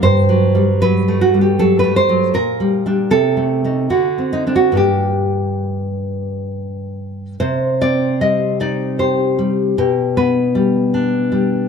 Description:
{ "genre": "romantic piece for solo classical guitar", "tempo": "67-81 BPM", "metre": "3/4", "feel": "rubato", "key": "G minor", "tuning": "A4 = 440 Hz", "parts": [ { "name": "nylon-string guitar", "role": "solo", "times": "0.0-11.7 s", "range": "G2 to Eb5", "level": "-14 LUFS", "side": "equal", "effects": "none" } ], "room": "moderate recital hall reverb, RT60 1.5 s", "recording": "close, detailed microphones, lossy compression artefacts", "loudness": "-14 LUFS", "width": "side -6 dB against mid", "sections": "0.0-7.4 A section; 7.4-11.7 B section", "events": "none", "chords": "0.0 F#dim/G; 2.3 Gm/Bb; 3.1 Adim/C; 3.9 D7; 4.8 Gm; 7.4 Cm; 9.8 G/B" }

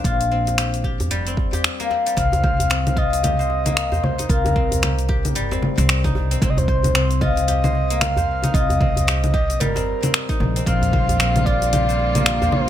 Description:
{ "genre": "organic downtempo", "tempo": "113 BPM", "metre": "4/4", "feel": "swing 59% on 16ths", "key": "C minor", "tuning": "A4 = 440 Hz", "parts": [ { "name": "guzheng", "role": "arpeggios", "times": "0.0-12.7 s", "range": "G3 to C5", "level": "-24 LUFS", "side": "left 4 dB", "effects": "ping-pong delay" }, { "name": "upright bass", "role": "bass", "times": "0.0-12.7 s", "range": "F1 to C2", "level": "-22 LUFS", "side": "equal", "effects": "sidechain pumping" }, { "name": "electronic kick drum", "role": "drums", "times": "0.0-11.6 s", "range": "none", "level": "-22 LUFS", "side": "right 1 dB", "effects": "none" }, { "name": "deep house drum kit", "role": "drums", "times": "0.1-12.6 s", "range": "congas, finger snaps, hi-hat, shaker", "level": "-23 LUFS", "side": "equal", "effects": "none" }, { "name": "djembe", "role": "percussion", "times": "0.5-12.5 s", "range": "none", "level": "-28 LUFS", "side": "right 1 dB", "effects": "none" }, { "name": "breathy flute-like synth lead", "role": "melody", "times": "2.2-12.7 s", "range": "Bb4 to F5", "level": "-24 LUFS", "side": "right 1 dB", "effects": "chorus, digital delay" }, { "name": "rich chamber string section", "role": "sustained chords", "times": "10.7-12.7 s", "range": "D3 to F4", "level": "-26 LUFS", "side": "right 1 dB", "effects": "sidechain pumping" } ], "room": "light reverb, small room ambience", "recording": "none", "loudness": "-17 LUFS", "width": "side -11 dB against mid", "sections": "0.0-2.2 A section; 2.2-12.7 B section", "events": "none", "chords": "0.0 Bb6; 2.2 Cm7; 10.7 Bb6" }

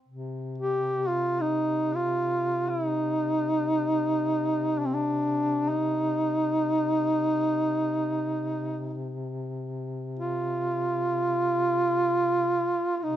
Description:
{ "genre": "caucasian folk, Caucasian lament", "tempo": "free time", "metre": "none", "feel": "none", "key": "C minor", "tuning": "A4 = 439 Hz", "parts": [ { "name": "dark duduk", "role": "drone", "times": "0.1-13.2 s", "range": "C3", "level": "-34 LUFS", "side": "left 2 dB", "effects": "stereo widening" }, { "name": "warm duduk", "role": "melody", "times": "0.6-13.2 s", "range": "C4 to G4", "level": "-24 LUFS", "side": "right 1 dB", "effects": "none" } ], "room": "small room ambience", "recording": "dry, close 1970s-style studio recording", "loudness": "-24 LUFS", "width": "side -11 dB against mid", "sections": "0.1-13.2 A section", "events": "none", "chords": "none" }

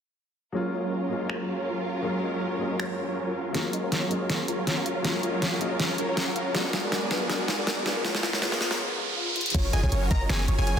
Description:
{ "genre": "future bass", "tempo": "160 BPM", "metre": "4/4", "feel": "swing 54% on 16ths, half-time", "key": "F# major", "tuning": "A4 = 439 Hz", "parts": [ { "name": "warm grand piano", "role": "accompaniment", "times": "0.5-9.6 s", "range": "E#3 to E#4", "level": "-33 LUFS", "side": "left 3 dB", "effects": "sidechain pumping, digital delay" }, { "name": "rich studio string section", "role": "sustained chords", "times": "0.5-8.8 s", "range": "E#3 to B4", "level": "-36 LUFS", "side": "right 1 dB", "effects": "sidechain pumping" }, { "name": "supersaw chords", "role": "riff", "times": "0.5-10.8 s", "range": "F#3 to E#5", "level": "-30 LUFS", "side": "right 1 dB", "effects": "sidechain pumping, low-pass filter, digital delay" }, { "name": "pop drum kit", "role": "drums", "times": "1.3-10.8 s", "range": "crash cymbal, finger snaps, hi-hat, snare drum", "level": "-29 LUFS", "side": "equal", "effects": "overdrive, low-pass filter on snare, low-pass filter on hats, low-pass filter on cymbals, low-pass filter on room" }, { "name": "soft round pluck", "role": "arpeggios", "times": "3.5-10.8 s", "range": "E#4 to F#5", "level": "-36 LUFS", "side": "left 3 dB", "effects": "ensemble chorus, sidechain pumping, digital delay" }, { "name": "riser", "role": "sound effects", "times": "6.4-9.5 s", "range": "none", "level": "-35 LUFS", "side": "right 1 dB", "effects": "none" }, { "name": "wide unison pluck", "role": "arpeggios", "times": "9.5-10.8 s", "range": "C#5 to D#5", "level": "-37 LUFS", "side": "right 1 dB", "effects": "sidechain pumping" }, { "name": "long sustained 808-style bass", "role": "bass", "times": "9.5-10.8 s", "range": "F#1", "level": "-25 LUFS", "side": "equal", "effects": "sidechain pumping" }, { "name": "electronic kick drum", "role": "drums", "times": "9.5-10.2 s", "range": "none", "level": "-26 LUFS", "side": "equal", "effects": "overdrive" }, { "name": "plucky unison lead", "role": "melody", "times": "9.7-10.8 s", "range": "G#5 to A#5", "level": "-32 LUFS", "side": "equal", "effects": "cassette tape, sidechain pumping, digital delay" } ], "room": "moderate lush hall reverb, RT60 1.9 s, digital ambience", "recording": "dense, heavily limited modern master, high-pass filter", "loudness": "-25 LUFS", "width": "side -8 dB against mid", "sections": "0.5-3.5 A section; 3.5-9.5 B section; 9.5-10.8 C section", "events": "build-up 3.5-9.5; drum fill 3.5-8.8, 9.4; filter sweep on supersaw synth 3.5-9.5; filter sweep on synth arpeggio sound 3.5-9.5; filter sweep 3.5-9.5; riser 6.4-9.5; drop 9.5-10.8", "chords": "0.5 F#maj7; 6.5 A#7b9b13; 8.0 C#9; 9.5 F#maj7" }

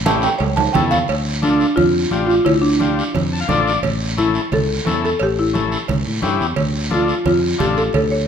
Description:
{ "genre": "latin, cumbia", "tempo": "175 BPM", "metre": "4/4", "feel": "straight", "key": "D harmonic minor", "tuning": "A4 = 440 Hz", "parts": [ { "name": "fingered electric bass", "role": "bass", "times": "0.0-8.3 s", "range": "A1 to A2", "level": "-22 LUFS", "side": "equal", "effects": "none" }, { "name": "buzzing marimba with medium mallets", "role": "melody", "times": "0.1-8.3 s", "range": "D4 to A5", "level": "-18 LUFS", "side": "right 1 dB", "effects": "none" }, { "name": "overdriven combo organ", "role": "accompaniment", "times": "0.1-7.8 s", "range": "C#4 to A5", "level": "-22 LUFS", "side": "left 5 dB", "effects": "none" }, { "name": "congas", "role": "percussion", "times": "0.1-8.1 s", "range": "none", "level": "-25 LUFS", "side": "right 3 dB", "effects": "none" }, { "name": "cowbell and timbales", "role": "percussion", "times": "0.1-8.1 s", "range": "none", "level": "-26 LUFS", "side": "right 5 dB", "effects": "none" }, { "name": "guiro", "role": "percussion", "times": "0.1-8.3 s", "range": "none", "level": "-29 LUFS", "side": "right 3 dB", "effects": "none" } ], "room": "moderate large studio reverb, RT60 1.2 s", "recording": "minimal, uncompressed stereo recording", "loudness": "-15 LUFS", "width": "side -7 dB against mid", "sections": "0.0-1.1 A section; 1.1-8.3 B section", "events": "marimba solo 0.0-1.1; drum fill 0.1-1.1; transistor combo organ fill 3.1-3.8", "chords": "0.0 A7; 1.1 Dm; 3.8 A7; 6.6 Dm" }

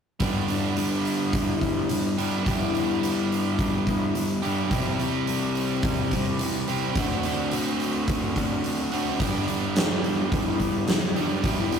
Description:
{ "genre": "rock, shoegaze and dream pop", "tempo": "107 BPM", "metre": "4/4", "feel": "straight", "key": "G major", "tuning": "A4 = 441 Hz", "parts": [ { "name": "picked twelve-string acoustic guitar", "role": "arpeggios", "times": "0.2-11.8 s", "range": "E4 to C5", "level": "-33 LUFS", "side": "left 7 dB", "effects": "none" }, { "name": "biting overdriven guitar", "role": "riff", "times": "0.2-11.8 s", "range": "G2 to G4", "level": "-27 LUFS", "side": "right 5 dB", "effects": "none" }, { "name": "thick fuzz guitar", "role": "riff", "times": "0.2-11.8 s", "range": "G2 to D4", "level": "-28 LUFS", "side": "left 4 dB", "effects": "distortion" }, { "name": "huge arena drum kit", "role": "drums", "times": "0.2-11.8 s", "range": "hi-hat, kick drum, snare drum", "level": "-28 LUFS", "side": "equal", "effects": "none" } ], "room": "moderate small room reverb, RT60 0.5 s", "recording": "rough rehearsal-room recording, tube saturation", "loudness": "-23 LUFS", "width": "side -7 dB against mid", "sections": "0.2-11.8 A section", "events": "none", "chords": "0.2 G6; 4.7 Cmaj7; 7.0 D5; 9.2 G6" }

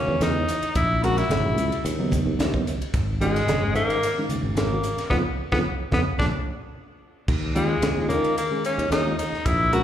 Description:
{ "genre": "electric jazz fusion", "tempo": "110 BPM", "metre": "4/4", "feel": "straight", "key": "Eb minor", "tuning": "A4 = 440 Hz", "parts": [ { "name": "bright tenor saxophone", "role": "melody", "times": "0.0-9.8 s", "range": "Ab3 to Gb4", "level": "-25 LUFS", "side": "left 2 dB", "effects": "slapback echo" }, { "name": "reed electric piano", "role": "accompaniment", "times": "0.0-9.8 s", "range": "Db3 to Db5", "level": "-29 LUFS", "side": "right 2 dB", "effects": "fast tremolo, slapback echo" }, { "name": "sustaining fretless electric bass", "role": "bass", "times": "0.1-9.8 s", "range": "Gb1 to Eb3", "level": "-25 LUFS", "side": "equal", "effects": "none" }, { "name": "crisp fusion drum kit", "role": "drums", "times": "0.2-9.8 s", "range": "crash cymbal, hi-hat, kick drum, ride cymbal, snare drum", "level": "-28 LUFS", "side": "equal", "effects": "none" }, { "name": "congas", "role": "percussion", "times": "0.2-6.3 s", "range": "none", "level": "-33 LUFS", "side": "left 1 dB", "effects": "slapback echo" } ], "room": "small room reverb", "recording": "live gig heard through the venue's PA, recital hall reverb", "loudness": "-21 LUFS", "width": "side -10 dB against mid", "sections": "0.0-7.3 A section; 7.3-9.8 A section", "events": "band accent 5.1-7.3; drum fill 6.2-7.3", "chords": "0.0 Emaj9; 0.8 Bbm7b5; 1.8 Ebm7; 2.9 Absus2; 5.1 B; 6.2 Bb; 7.3 Eb9sus4" }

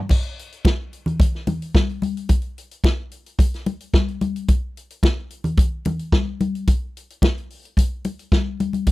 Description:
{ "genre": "disco", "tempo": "110 BPM", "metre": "4/4", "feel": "straight", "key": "none", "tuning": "none", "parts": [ { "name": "vintage drum kit", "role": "drums", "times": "0.1-8.9 s", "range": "crash cymbal, hi-hat, kick drum, snare drum", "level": "-18 LUFS", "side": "equal", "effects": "none" }, { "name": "congas", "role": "percussion", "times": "0.1-8.9 s", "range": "none", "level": "-23 LUFS", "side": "left 3 dB", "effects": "none" } ], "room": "little or no reverb", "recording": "dry, close 1970s-style studio recording", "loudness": "-19 LUFS", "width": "side -18 dB against mid", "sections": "0.1-8.9 A section", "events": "none", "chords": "none" }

